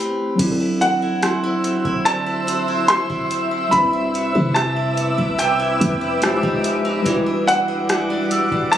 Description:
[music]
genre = contemporary R&B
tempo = 72 BPM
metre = 4/4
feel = straight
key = unclear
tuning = A4 = 442 Hz
[part]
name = mellow tine electric piano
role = accompaniment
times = 0.0-8.8 s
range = F#3 to C5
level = -23 LUFS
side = equal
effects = medium stereo tremolo
[part]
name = picked steel-string acoustic guitar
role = arpeggios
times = 0.0-8.8 s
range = C3 to B4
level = -26 LUFS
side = right 1 dB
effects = ping-pong delay
[part]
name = granular cloud pad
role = sustained chords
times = 1.3-8.8 s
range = G3 to E6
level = -24 LUFS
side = equal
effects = built-in reverb
[part]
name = clean 808-style bass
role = bass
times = 0.4-8.8 s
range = D1 to C3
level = -24 LUFS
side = equal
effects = none
[part]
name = booming analog drum machine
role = drums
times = 0.4-8.8 s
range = crash cymbal, hi-hat, kick drum, rim click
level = -25 LUFS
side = equal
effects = none
[part]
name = warm baby grand piano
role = melody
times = 0.8-8.8 s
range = F#5 to C6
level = -21 LUFS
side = equal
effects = ping-pong delay
[part]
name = celesta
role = texture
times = 1.2-2.6, 8.3-8.8 s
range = C6 to E6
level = -26 LUFS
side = right 2 dB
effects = ping-pong delay
[sound]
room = light reverb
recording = recorded on a phone in the room, club ambience, compression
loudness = -17 LUFS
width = side -10 dB against mid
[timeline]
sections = 0.4-8.8 A section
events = break 0.0-0.4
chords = 0.4 D9; 3.7 Cmaj9#11; 6.2 Fm9; 7.1 Em9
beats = | 0.39 1.23 2.06 2.89 | 3.73 4.56 5.39 6.22 | 7.06 7.89 8.72

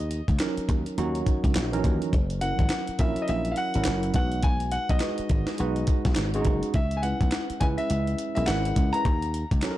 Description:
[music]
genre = R&B, new jack swing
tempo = 104 BPM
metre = 4/4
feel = swing 61% on 16ths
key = unclear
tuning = A4 = 438 Hz
[part]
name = clear concert grand piano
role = melody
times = 0.0-9.5 s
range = D#5 to A#5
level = -31 LUFS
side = left 1 dB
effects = none
[part]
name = dry thumbed slap bass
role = bass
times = 0.0-9.6 s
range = F#1 to D#2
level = -28 LUFS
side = equal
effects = none
[part]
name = breakbeat sampler-style drum kit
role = drums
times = 0.1-9.8 s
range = handclaps, hi-hat, kick drum, snare drum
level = -26 LUFS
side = equal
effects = vintage 12-bit sampler grit
[part]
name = tine electric piano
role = accompaniment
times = 0.4-9.8 s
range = E3 to B4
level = -30 LUFS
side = right 2 dB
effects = medium stereo tremolo
[sound]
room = digital ambience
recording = dark, warm production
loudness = -23 LUFS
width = side -14 dB against mid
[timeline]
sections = 0.0-9.8 A section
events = none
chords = 0.0 D#m7; 2.1 F#7; 4.1 B6; 6.7 C#m7; 9.1 D#m7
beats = 0.40 0.97 1.55 | 2.13 2.71 3.28 3.86 | 4.44 5.01 5.59 6.17 | 6.74 7.32 7.90 8.47 | 9.05 9.63

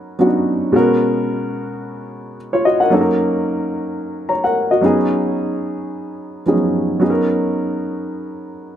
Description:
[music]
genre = amapiano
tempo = 110 BPM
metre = 4/4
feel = swing 55% on 16ths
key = Eb minor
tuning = A4 = 437 Hz
[part]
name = dark baby grand piano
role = solo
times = 0.0-8.8 s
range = Cb3 to Bb5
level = -16 LUFS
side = equal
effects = none
[sound]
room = light reverb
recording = none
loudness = -15 LUFS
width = side -10 dB against mid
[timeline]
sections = 0.0-2.9 A section; 2.9-8.8 B section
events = drop 0.0-2.9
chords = 0.0 Bmaj9; 0.7 Abm11/Cb; 2.9 Ebm7; 4.8 Db9sus4; 7.0 Bmaj9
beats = 0.20 | 0.74 1.29 1.83 2.38 | 2.92 3.47 4.01 4.56 | 5.10 5.65 6.20 6.74 | 7.29 7.83 8.38

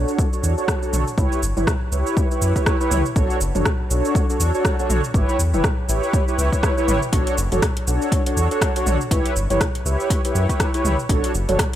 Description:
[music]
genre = afro house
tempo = 121 BPM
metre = 4/4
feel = swing 57% on 16ths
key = B minor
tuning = A4 = 439 Hz
[part]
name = mellow synth brass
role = stabs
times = 0.0-11.6 s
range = D4 to C#5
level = -22 LUFS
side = right 1 dB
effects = chorus, sidechain pumping, dub echo
[part]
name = round analog bass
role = bass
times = 0.0-11.6 s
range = E1 to F#2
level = -21 LUFS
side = equal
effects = sidechain pumping
[part]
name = deep house drum kit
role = drums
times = 0.1-11.8 s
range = cabasa, hi-hat, rim click, toms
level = -26 LUFS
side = equal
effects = overdrive, studio ambience
[part]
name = electronic kick drum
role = drums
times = 0.2-11.7 s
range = none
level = -22 LUFS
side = equal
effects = overdrive, studio ambience
[sound]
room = light reverb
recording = none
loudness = -18 LUFS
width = side -11 dB against mid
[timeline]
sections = 0.0-11.8 A section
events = none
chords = 0.0 Bm7; 1.2 C#m7b5; 3.2 Bm7; 5.1 A9; 7.1 Bm7; 9.1 C#m7b5; 11.1 Bm7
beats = 0.18 0.68 | 1.18 1.67 2.17 2.67 | 3.16 3.66 4.15 4.65 | 5.14 5.64 6.14 6.63 | 7.13 7.62 8.12 8.62 | 9.11 9.61 10.10 10.60 | 11.09 11.59

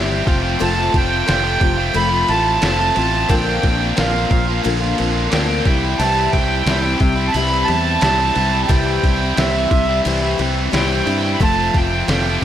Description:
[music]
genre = folk rock and heartland rock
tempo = 89 BPM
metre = 4/4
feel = straight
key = C major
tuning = A4 = 440 Hz
[part]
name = accordion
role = melody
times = 0.0-12.4 s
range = E5 to B5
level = -20 LUFS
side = right 2 dB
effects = slapback echo, analog delay
[part]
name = picked steel-string acoustic guitar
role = accompaniment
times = 0.0-12.4 s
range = Bb2 to C5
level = -23 LUFS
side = left 6 dB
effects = slapback echo
[part]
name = biting overdriven guitar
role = riff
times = 0.0-12.4 s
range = F2 to G4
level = -22 LUFS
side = right 1 dB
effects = none
[part]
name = fingered electric bass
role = bass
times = 0.0-12.4 s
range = F1 to G2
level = -21 LUFS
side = equal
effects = none
[part]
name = trip hop sampler-style drum kit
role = drums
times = 0.3-12.4 s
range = crash cymbal, kick drum, snare drum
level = -21 LUFS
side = equal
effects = none
[sound]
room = moderate lush hall reverb, RT60 2.6 s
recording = big arena sound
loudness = -14 LUFS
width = side -10 dB against mid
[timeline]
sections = 0.0-12.4 A section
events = none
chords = 0.3 F; 3.3 Bbadd9; 5.7 C; 11.4 F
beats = | 0.61 1.28 1.96 2.63 | 3.30 3.98 4.65 5.33 | 6.00 6.68 7.35 8.03 | 8.71 9.38 10.06 10.74 | 11.41 12.09

